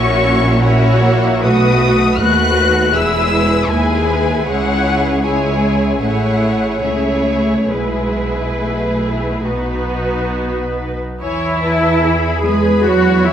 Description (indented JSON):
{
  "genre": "classical, slow romantic movement for string orchestra",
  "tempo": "66-83 BPM",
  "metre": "4/4",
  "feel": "rubato",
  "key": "E major",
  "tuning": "A4 = 440 Hz",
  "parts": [
    { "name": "muted studio violin section", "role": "melody", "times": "0.0-13.3 s", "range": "B4 to F#6", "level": "-21 LUFS", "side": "left 6 dB", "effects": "none" },
    { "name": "muted chamber violin section", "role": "second line", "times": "0.0-13.3 s", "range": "F#4 to C#5", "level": "-20 LUFS", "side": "equal", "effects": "none" },
    { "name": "muted symphonic viola section", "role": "accompaniment", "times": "0.0-13.3 s", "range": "G#3 to G#4", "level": "-18 LUFS", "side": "equal", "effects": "none" },
    { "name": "muted chamber cello section", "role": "bass", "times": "0.0-13.3 s", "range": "C#2 to G#3", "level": "-20 LUFS", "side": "right 1 dB", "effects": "none" },
    { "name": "muted symphonic double bass section", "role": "bass", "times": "0.0-13.3 s", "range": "E1 to E2", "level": "-20 LUFS", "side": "right 2 dB", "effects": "none" }
  ],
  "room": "wet recital hall reverb, RT60 1.6 s",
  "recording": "none",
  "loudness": "-13 LUFS",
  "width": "side -9 dB against mid",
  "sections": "0.0-11.2 A section; 11.2-13.3 B section",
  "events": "none",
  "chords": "0.0 F#7/A#; 1.4 B7; 2.9 E; 4.5 C#m; 6.0 Amaj7; 7.7 E/B; 9.5 B; 11.2 E",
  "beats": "0.62 | 1.44 2.18 2.93 3.70 | 4.47 5.24 6.01 6.82 | 7.71 8.61 9.47 10.34 | 11.21 12.04 12.84"
}